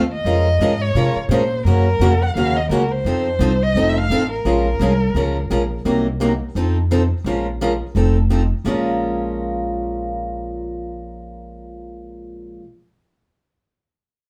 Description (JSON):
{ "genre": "acoustic string swing (jazz manouche)", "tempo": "172 BPM", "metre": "4/4", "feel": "swing 60% on 8ths", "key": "Bb minor", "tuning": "A4 = 440 Hz", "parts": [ { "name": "picked steel-string acoustic guitar", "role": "accompaniment", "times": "0.0-12.7 s", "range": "Bb2 to Bb4", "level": "-23 LUFS", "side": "equal", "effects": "none" }, { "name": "upright bass", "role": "bass", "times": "0.0-12.6 s", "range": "F1 to C3", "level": "-22 LUFS", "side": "equal", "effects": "none" }, { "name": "warm violin", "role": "melody", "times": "0.1-5.7 s", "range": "Bb4 to Gb5", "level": "-24 LUFS", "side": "equal", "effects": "plate reverb" } ], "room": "wet club reverb, RT60 0.7 s", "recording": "heard from further back in the room", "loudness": "-19 LUFS", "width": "mono", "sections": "0.0-5.8 A section; 5.8-8.6 B section; 8.6-11.4 C section", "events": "none", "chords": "0.3 Bbm7; 1.7 Gb; 3.1 F7; 4.5 Bbm7; 5.8 Cm7b5; 6.5 F7; 7.2 Bbm7; 7.9 F7; 8.6 Bbm7" }